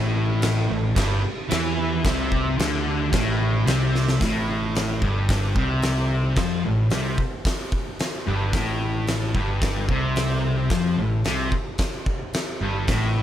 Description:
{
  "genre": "garage rock duo or trio",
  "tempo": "111 BPM",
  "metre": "4/4",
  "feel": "straight",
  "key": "A minor",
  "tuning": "A4 = 439 Hz",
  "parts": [
    { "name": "fuzz guitar", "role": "riff", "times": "0.0-13.2 s", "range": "G2 to F3", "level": "-22 LUFS", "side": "equal", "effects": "distortion" },
    { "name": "modern bright picked electric bass", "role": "bass", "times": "0.0-13.2 s", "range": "G1 to F2", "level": "-28 LUFS", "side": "equal", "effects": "none" },
    { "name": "oversized low-tuned drum kit", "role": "drums", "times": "0.4-13.0 s", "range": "crash cymbal, hi-hat, kick drum, snare drum", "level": "-26 LUFS", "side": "equal", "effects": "none" }
  ],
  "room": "light reverb",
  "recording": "none",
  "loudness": "-20 LUFS",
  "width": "side -11 dB against mid",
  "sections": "0.0-4.2 A section; 4.2-13.2 B section",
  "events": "drum fill 3.9",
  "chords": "0.0 Am"
}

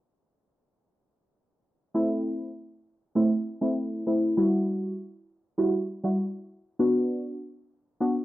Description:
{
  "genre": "dancehall",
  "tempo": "99 BPM",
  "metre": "4/4",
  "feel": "straight",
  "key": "unclear",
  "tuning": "A4 = 440 Hz",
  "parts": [
    { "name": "deep mellow chord stab", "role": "accompaniment", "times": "1.9-8.2 s", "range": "G3 to F#4", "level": "-24 LUFS", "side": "equal", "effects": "chorus, phaser, cassette tape" }
  ],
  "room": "light reverb",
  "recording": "home recording on cassette, low-pass filter",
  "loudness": "-25 LUFS",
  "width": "side -16 dB against mid",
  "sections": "1.9-8.2 A section",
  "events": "filter sweep 1.9-8.2",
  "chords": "1.9 Am; 4.4 Emadd9; 6.8 Bm"
}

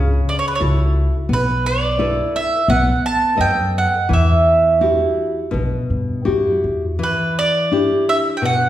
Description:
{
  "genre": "fado-style ballad",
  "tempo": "85 BPM",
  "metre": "4/4",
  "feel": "rubato",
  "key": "E dorian",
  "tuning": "A4 = 440 Hz",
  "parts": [
    { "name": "mandolin", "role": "melody", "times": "0.0-8.7 s", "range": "B4 to A5", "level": "-17 LUFS", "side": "right 2 dB", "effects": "none" },
    { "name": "nylon-string guitar", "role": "accompaniment", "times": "0.0-8.7 s", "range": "B2 to D#5", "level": "-20 LUFS", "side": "left 2 dB", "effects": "none" },
    { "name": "upright bass", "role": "bass", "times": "0.0-7.0 s", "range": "B1 to G2", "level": "-20 LUFS", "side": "equal", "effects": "none" }
  ],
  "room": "wet recital hall reverb, RT60 1.3 s",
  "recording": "heard from further back in the room",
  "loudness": "-15 LUFS",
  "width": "side -12 dB against mid",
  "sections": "0.0-7.0 A section; 7.0-8.7 A section",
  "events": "none",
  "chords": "0.0 F#m7; 1.3 B7sus4; 2.7 B7; 4.1 Emadd9; 7.0 Em7"
}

